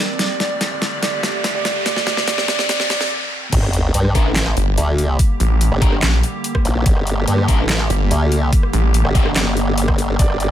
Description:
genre	heavy wobble dubstep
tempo	144 BPM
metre	4/4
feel	half-time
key	G minor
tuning	A4 = 442 Hz
part	dark grand piano	melody	0.0-3.1, 10.2-10.5 s	Bb4 to D5	-24 LUFS	right 6 dB	digital delay
part	evolving wavetable pad	sustained chords	0.0-10.5 s	D3 to D5	-25 LUFS	equal	chorus, built-in reverb, sidechain pumping
part	riser and sub drop	sound effects	0.0-5.2 s	none	-23 LUFS	equal	none
part	dubstep drum kit	drums	0.2-10.5 s	crash cymbal, handclaps, hi-hat, rim click, snare drum	-22 LUFS	equal	overdrive, studio reverb
part	formant-sweep wobble bass	bass	3.5-10.5 s	G1 to G2	-18 LUFS	equal	chorus, overdrive
part	electronic kick drum	drums	3.5-10.3 s	none	-16 LUFS	equal	overdrive, studio reverb
part	thick fuzz guitar	stabs	4.1-9.3 s	D4 to Bb4	-26 LUFS	left 2 dB	distortion, digital delay
part	snarling distorted saw bass	bass	4.6-9.0 s	G1 to Bb1	-15 LUFS	equal	distortion, overdrive
room	digital ambience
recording	high-pass filter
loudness	-15 LUFS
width	side -11 dB against mid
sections	0.0-3.5 A section; 3.5-10.5 B section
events	build-up 0.0-3.5; drum fill 0.0-3.1; riser 0.0-3.1; stop 3.1-3.5; drop 3.5-10.5; impact 3.5-5.2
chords	0.2 Dsus4; 1.9 Cmadd9; 3.5 Gm

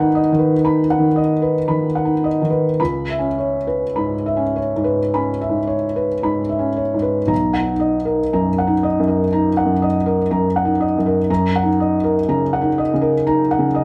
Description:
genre	neoclassical minimalist piano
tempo	51-62 BPM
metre	4/4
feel	rubato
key	unclear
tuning	A4 = 440 Hz
part	felt-muted upright piano	solo	0.0-13.8 s	B1 to B5	-18 LUFS	equal	none
room	wet studio reverb, RT60 0.6 s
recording	heard from further back in the room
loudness	-18 LUFS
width	mono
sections	0.0-7.3 A section; 7.3-13.8 A section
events	none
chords	0.0 G#m7; 2.8 C#m7; 7.3 Bmaj7; 11.3 F#6

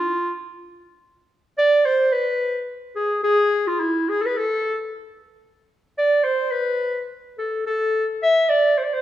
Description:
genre	klezmer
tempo	108 BPM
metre	4/4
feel	straight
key	D dorian sharp4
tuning	A4 = 440 Hz
part	mellow clarinet	solo	0.0-9.0 s	E4 to E5	-19 LUFS	equal	none
room	wet recital hall reverb, RT60 1.5 s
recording	none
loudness	-18 LUFS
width	side -13 dB against mid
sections	0.0-9.0 A section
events	none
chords	none

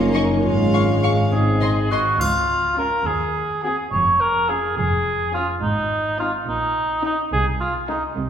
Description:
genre	cinematic, playful, whimsical film cue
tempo	70 BPM (dotted quarters)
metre	6/8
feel	straight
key	Db major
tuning	A4 = 441 Hz
part	clear studio violin section	melody	0.0-8.1 s	Eb5 to Ab5	-36 LUFS	left 1 dB	none
part	bright clarinet	second line	0.0-1.3 s	Eb4 to F4	-25 LUFS	right 4 dB	none
part	dark studio viola section	accompaniment	0.0-8.1 s	Ab3 to Db4	-29 LUFS	right 2 dB	none
part	mellow French horn section	sustained chords	0.0-1.9 s	C4 to F4	-24 LUFS	left 3 dB	none
part	dark studio double bass section	bass	0.0-8.3 s	F1 to Eb2	-24 LUFS	equal	none
part	warm studio cello section	bass	0.0-8.3 s	Db2 to C3	-29 LUFS	right 1 dB	none
part	dark studio violin section	second line	0.1-8.1 s	Eb4 to Db6	-29 LUFS	left 4 dB	none
part	warm cor anglais	second line	1.3-8.0 s	Eb4 to Db5	-20 LUFS	right 1 dB	none
part	triangle	percussion	2.2-3.3 s	none	-35 LUFS	left 2 dB	none
room	wet scoring stage reverb, RT60 1.7 s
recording	heard from further back in the room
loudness	-18 LUFS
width	side -8 dB against mid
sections	0.0-2.2 A section; 2.2-8.3 B section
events	none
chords	0.4 Db/Ab; 1.3 Ab; 2.2 Db; 3.1 Ab7/Eb; 3.9 Db/F; 5.6 Ab; 6.5 Eb7/Bb; 7.3 Ab/C

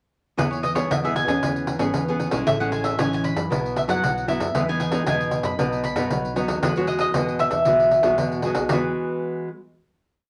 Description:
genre	samba and choro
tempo	115 BPM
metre	4/4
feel	straight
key	E major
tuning	A4 = 440 Hz
part	mandolin	melody	0.4-8.1 s	B4 to B5	-26 LUFS	equal	none
part	nylon-string guitar	accompaniment	0.4-9.5 s	A2 to G#4	-27 LUFS	equal	none
part	vintage muted fingered electric bass	bass	0.4-8.9 s	G#1 to F#2	-35 LUFS	equal	none
part	pandeiro	percussion	0.4-8.8 s	none	-29 LUFS	equal	none
part	breathy trombone	second line	7.9-9.0 s	F#4 to G#4	-35 LUFS	equal	none
room	wet small room reverb, RT60 0.5 s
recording	none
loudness	-23 LUFS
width	mono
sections	0.4-8.7 A section; 8.7-10.3 final chord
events	none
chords	0.4 E; 1.4 C#m7; 2.5 Amaj7; 3.5 Bsus4; 4.5 Emaj7; 5.6 B; 6.6 Eadd9

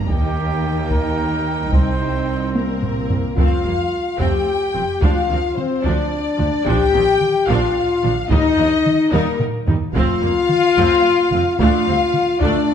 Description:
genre	cinematic, epic orchestral film score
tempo	73 BPM (dotted quarters)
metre	6/8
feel	straight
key	F mixolydian from 3.4 s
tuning	A4 = 444 Hz
part	warm studio violin section	melody	0.0-12.7 s	Bb4 to G5	-27 LUFS	left 6 dB	none
part	rich symphonic violin section	second line	0.0-12.7 s	Eb4 to G5	-26 LUFS	left 4 dB	none
part	rich symphonic viola section	accompaniment	0.0-12.7 s	Eb3 to Eb4	-26 LUFS	right 2 dB	none
part	dark symphonic cello section	bass	0.0-12.5 s	C2 to Bb2	-26 LUFS	right 3 dB	none
part	rich symphonic double bass section	bass	0.0-12.5 s	F1 to Eb2	-25 LUFS	right 4 dB	none
part	warm French horn section	sustained chords	0.1-12.7 s	G3 to G4	-19 LUFS	left 4 dB	none
part	mellow trumpet	stabs	0.1-3.1 s	G4 to C5	-26 LUFS	right 4 dB	none
part	taiko ensemble	drums	0.1-12.7 s	none	-22 LUFS	equal	none
room	wet scoring stage reverb, RT60 1.5 s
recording	dark, warm production, nothing above 10.8 kHz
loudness	-15 LUFS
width	side -8 dB against mid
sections	0.0-3.4 A section; 3.4-12.7 B section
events	drum fill 2.6-3.4, 9.1-10.0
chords	0.1 Eb; 1.7 Cm; 3.4 F; 5.0 Dm; 6.7 Bb; 8.3 Eb; 10.0 F; 11.6 Dm

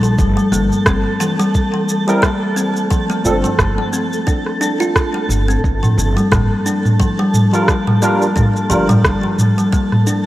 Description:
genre	organic downtempo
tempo	88 BPM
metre	4/4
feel	swing 57% on 16ths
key	G minor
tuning	A4 = 440 Hz
part	kalimba	arpeggios	0.0-10.2 s	E3 to F4	-17 LUFS	left 1 dB	ping-pong delay
part	upright bass	bass	0.0-9.2 s	G1 to Bb1	-19 LUFS	equal	tube saturation, sidechain pumping
part	organic electronic drum kit	drums	0.0-10.2 s	rim click, shaker, toms	-17 LUFS	equal	none
part	twinkling granular texture	texture	0.0-10.3 s	A3 to A4	-23 LUFS	right 1 dB	built-in reverb
part	electronic kick drum	drums	0.2-9.9 s	none	-17 LUFS	equal	none
part	barky tine electric piano	accompaniment	2.1-8.9 s	F3 to Bb4	-20 LUFS	right 1 dB	overdrive, ensemble chorus, sidechain pumping, ping-pong delay
room	light reverb, digital ambience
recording	worn, warbling old tape, cassette tape, warbly pitch drift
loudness	-13 LUFS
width	side -15 dB against mid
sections	0.0-10.3 A section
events	none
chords	0.2 C7/G; 2.9 Dm7/G; 5.6 Gm7

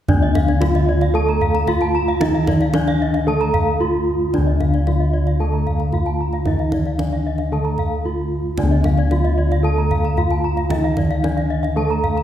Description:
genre	Balinese gamelan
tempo	113 BPM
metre	4/4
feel	straight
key	D pelog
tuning	A4 = 440 Hz
part	gamelan-type bronze metallophone	melody	0.1-12.2 s	D4 to A4	-22 LUFS	equal	none
part	gamelan-type bronze metallophone	accompaniment	0.1-12.2 s	D3 to A3	-26 LUFS	right 2 dB	none
part	gamelan-type bronze metallophone	arpeggios	0.1-12.2 s	D5 to Bb5	-26 LUFS	left 6 dB	none
part	gamelan-type bossed gongs	bass	0.1-12.2 s	D2 to Eb4+35c	-20 LUFS	equal	none
part	kendang	percussion	0.1-12.2 s	none	-25 LUFS	right 1 dB	none
part	gamelan-type bronze metallophone	arpeggios	0.2-12.0 s	Eb5+35c to Bb5	-28 LUFS	right 2 dB	none
room	wet concert hall reverb, RT60 2.2 s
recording	heard from further back in the room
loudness	-16 LUFS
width	side -10 dB against mid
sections	0.1-12.2 A section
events	none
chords	none

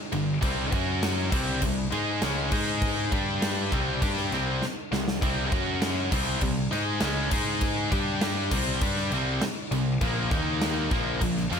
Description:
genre	hard rock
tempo	100 BPM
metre	4/4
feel	straight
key	unclear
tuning	A4 = 440 Hz
part	high-gain distorted guitar	riff	0.1-11.6 s	G2 to Ab4	-30 LUFS	right 13 dB	distortion
part	tight distorted guitar	riff	0.1-11.6 s	G2 to Ab4	-30 LUFS	left 13 dB	distortion
part	fuzz picked electric bass	bass	0.1-11.6 s	G1 to Ab2	-31 LUFS	equal	overdrive
part	big rock drum kit	drums	0.1-11.6 s	crash cymbal, kick drum, snare drum	-29 LUFS	equal	none
room	light reverb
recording	none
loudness	-24 LUFS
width	side -7 dB against mid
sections	0.0-11.6 A section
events	drum fill 4.6-5.2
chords	0.4 C5; 0.7 F#5; 1.3 C5; 2.5 Ab5; 3.1 G5; 3.7 C5; 5.5 F#5; 6.1 C5; 7.3 Ab5; 7.9 G5; 8.5 C5; 10.0 Bb5; 10.3 Eb5; 10.9 Bb5

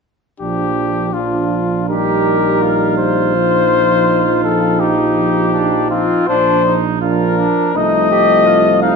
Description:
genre	classical, brass quintet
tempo	82 BPM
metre	4/4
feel	rubato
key	Bb major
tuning	A4 = 438 Hz
part	mellow cornet	melody	0.4-9.0 s	F4 to F5	-15 LUFS	left 6 dB	none
part	mellow trombone	accompaniment	0.4-9.0 s	F3 to G3	-21 LUFS	right 5 dB	none
part	warm French horn	accompaniment	0.4-9.0 s	A3 to Eb4	-20 LUFS	left 2 dB	none
part	mellow tuba	bass	0.4-9.0 s	Bb1 to C2	-21 LUFS	right 6 dB	none
part	clear trumpet	second line	1.9-9.0 s	C4 to G4	-19 LUFS	right 8 dB	none
room	moderate recital hall reverb, RT60 1.3 s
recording	minimal, uncompressed stereo recording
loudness	-12 LUFS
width	side -5 dB against mid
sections	0.4-9.0 A section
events	none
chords	0.4 Bb; 1.9 Eb/Bb; 3.4 F5/Bb; 6.3 Bb; 7.8 F7/C

